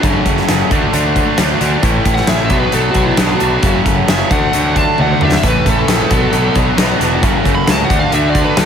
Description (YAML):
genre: quiet-loud alternative rock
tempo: 133 BPM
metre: 4/4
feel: straight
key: B minor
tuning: A4 = 445 Hz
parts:
  - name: high-gain lead guitar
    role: melody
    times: 0.0-8.7 s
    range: D4 to B5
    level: -20 LUFS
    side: equal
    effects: distortion
  - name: twangy electric guitar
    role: arpeggios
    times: 0.0-8.7 s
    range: F#2 to G#4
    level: -24 LUFS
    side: right 6 dB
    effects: wide subtle chorus
  - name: distorted electric guitar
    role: riff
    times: 0.0-8.7 s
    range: F#2 to D4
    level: -18 LUFS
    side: left 13 dB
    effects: overdrive
  - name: distorted electric guitar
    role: riff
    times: 0.0-8.7 s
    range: F#2 to F#4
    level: -19 LUFS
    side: right 13 dB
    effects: overdrive
  - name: fuzz picked electric bass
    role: bass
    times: 0.0-8.7 s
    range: E1 to D2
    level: -18 LUFS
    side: equal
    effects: overdrive
  - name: huge arena drum kit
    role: drums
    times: 0.0-8.7 s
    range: hi-hat, kick drum, snare drum, toms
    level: -16 LUFS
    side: equal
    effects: none
room: light reverb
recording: none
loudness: -11 LUFS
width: side -8 dB against mid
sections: 0.0-8.7 A section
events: lead electric guitar solo 0.0-8.7; drum fill 5.0-5.4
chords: 0.0 F#madd9; 0.7 D; 1.8 Amaj7; 2.5 Bm7; 3.6 F#madd9; 4.3 D; 5.4 Amaj7; 6.1 Bm7; 7.2 F#madd9; 7.9 D